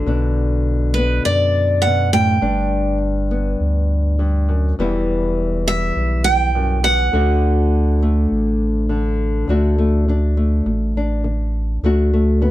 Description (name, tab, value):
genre	acoustic folk duo or small band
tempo	102 BPM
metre	4/4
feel	straight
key	unclear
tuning	A4 = 439 Hz
part	nylon-string guitar	accompaniment	0.0-12.5 s	D2 to F#4	-20 LUFS	left 2 dB	none
part	pure sine sub bass	bass	0.0-12.5 s	E1 to F#2	-18 LUFS	equal	none
part	picked steel-string acoustic guitar	melody	0.9-9.2 s	B4 to G5	-19 LUFS	right 2 dB	none
room	light reverb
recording	close, detailed microphones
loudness	-15 LUFS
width	side -14 dB against mid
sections	0.0-9.5 A section; 9.5-12.5 B section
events	none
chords	0.1 Bm; 2.4 G; 4.8 Em; 7.1 D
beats	| 0.07 0.66 1.25 1.84 | 2.42 3.01 3.60 4.19 | 4.78 5.37 5.96 6.55 | 7.14 7.72 8.31 8.90 | 9.49 10.07 10.66 11.25 | 11.83 12.42